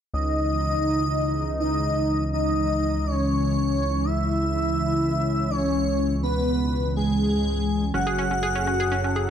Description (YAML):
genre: techno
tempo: 123 BPM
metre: 4/4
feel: straight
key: C# minor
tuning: A4 = 440 Hz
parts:
  - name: fat analog lead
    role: melody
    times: 0.1-9.3 s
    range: G#3 to F#4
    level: -26 LUFS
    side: equal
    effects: analog chorus, cassette tape, digital delay
  - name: airy dreamy lead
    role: second line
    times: 0.1-9.3 s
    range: G#4 to F#5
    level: -27 LUFS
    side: equal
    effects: chorus, ping-pong delay
  - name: sweeping resonant pad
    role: sustained chords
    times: 0.1-9.3 s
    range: C#3 to A4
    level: -29 LUFS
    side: right 1 dB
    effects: chorus
  - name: fat analog bass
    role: bass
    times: 0.1-9.3 s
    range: F#1 to C#2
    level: -27 LUFS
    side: equal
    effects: none
  - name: analog pluck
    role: arpeggios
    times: 7.9-9.3 s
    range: C#4 to G#4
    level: -28 LUFS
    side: right 1 dB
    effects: chorus, ping-pong delay
room: moderate recital hall reverb, RT60 1.7 s, digital ambience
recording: none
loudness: -21 LUFS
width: side -9 dB against mid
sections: 0.1-9.3 A section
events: none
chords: 0.1 C#madd9; 7.9 F#m